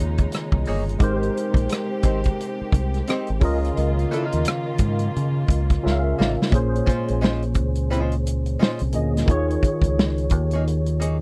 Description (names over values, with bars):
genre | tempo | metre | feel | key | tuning
R&B, neo-soul | 87 BPM | 4/4 | swing 60% on 16ths | Bb dorian | A4 = 440 Hz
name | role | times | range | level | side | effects
barky tine electric piano | accompaniment | 0.0-11.2 s | Bb2 to F5 | -27 LUFS | equal | ensemble chorus
rich studio string section | sustained chords | 0.0-6.5 s | C3 to G4 | -35 LUFS | equal | none
deep dub fingered electric bass | bass | 0.0-11.2 s | G1 to Db3 | -26 LUFS | equal | none
warm soul drum kit | drums | 0.2-11.2 s | hi-hat, kick drum, rim click, snare drum | -23 LUFS | equal | none
archtop guitar, miked and amplified | second line | 0.7-11.2 s | Ab3 to Db5 | -29 LUFS | equal | wah
room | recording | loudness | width
little or no reverb | none | -22 LUFS | mono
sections
0.0-6.5 A section; 6.5-11.2 B section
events
drum fill 5.8-6.5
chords
0.0 Eb7sus4; 1.0 Abmaj7; 3.4 Db69; 6.5 Bbm9; 9.3 Eb7sus4